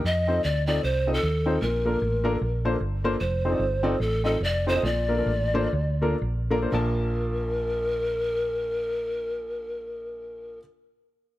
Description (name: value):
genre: uptempo gospel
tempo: 114-152 BPM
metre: 4/4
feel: swing 59% on 8ths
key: Bb major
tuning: A4 = 440 Hz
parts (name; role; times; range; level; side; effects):
- hollow-body short-scale fingered electric bass; bass; 0.0-10.6 s; F1 to F2; -27 LUFS; equal; none
- breathy mellow pan flute; melody; 0.1-10.6 s; A4 to Eb5; -27 LUFS; equal; none
- warm upright piano; accompaniment; 0.3-10.6 s; Bb1 to A5; -28 LUFS; left 1 dB; none
room: small room ambience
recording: none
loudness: -23 LUFS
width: side -15 dB against mid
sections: 0.0-3.2 A section; 3.2-6.7 B section; 6.7-10.9 C section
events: slowing down 3.2-6.7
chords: 0.0 F7; 1.6 Bbmaj7; 3.2 F7; 4.8 Bbmaj7